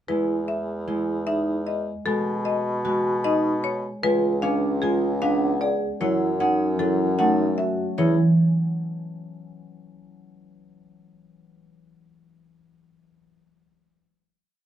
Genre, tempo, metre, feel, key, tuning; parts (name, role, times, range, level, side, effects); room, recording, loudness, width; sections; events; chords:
classical, minimalist pattern music; 152 BPM; 5/4; straight; A4 = 441 Hz
marimba with medium hard mallets; melody; 0.1-8.2 s; G#4 to F#5; -27 LUFS; left 3 dB
concert harp; accompaniment; 0.1-10.0 s; E3 to C#4; -26 LUFS; left 1 dB
vibraphone with soft mallets; arpeggios; 0.1-8.2 s; D4 to G#4; -25 LUFS; right 4 dB
warm bassoon; bass; 0.1-8.2 s; C#2 to B2; -27 LUFS; right 1 dB
little or no reverb; close, detailed microphones; -21 LUFS; side -10 dB against mid
0.1-8.0 A section; 8.0-10.0 final chord
0.1 E; 2.1 B; 4.0 C#7b9; 6.0 F#m7; 8.0 C#m/E